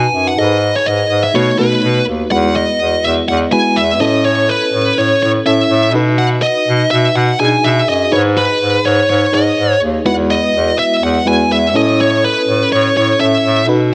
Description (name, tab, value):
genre	1980s-style pop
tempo	124 BPM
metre	4/4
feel	swing 55% on 16ths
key	unclear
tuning	A4 = 440 Hz
part	high-gain lead guitar	melody	0.0-13.7 s	B4 to G#5	-16 LUFS	equal	distortion
part	FM electric piano with tremolo	accompaniment	0.0-13.9 s	G#3 to C#5	-19 LUFS	equal	none
part	clear bass clarinet	bass	0.0-13.9 s	D#2 to B2	-19 LUFS	equal	none
room	moderate lush hall reverb, RT60 2.4 s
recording	none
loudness	-13 LUFS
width	mono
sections	0.0-2.3 A section; 2.3-13.9 A section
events	none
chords	0.4 G#m; 1.3 B7; 2.3 Eadd9; 4.0 A; 5.9 B; 8.1 G#m; 10.1 Eadd9; 11.7 A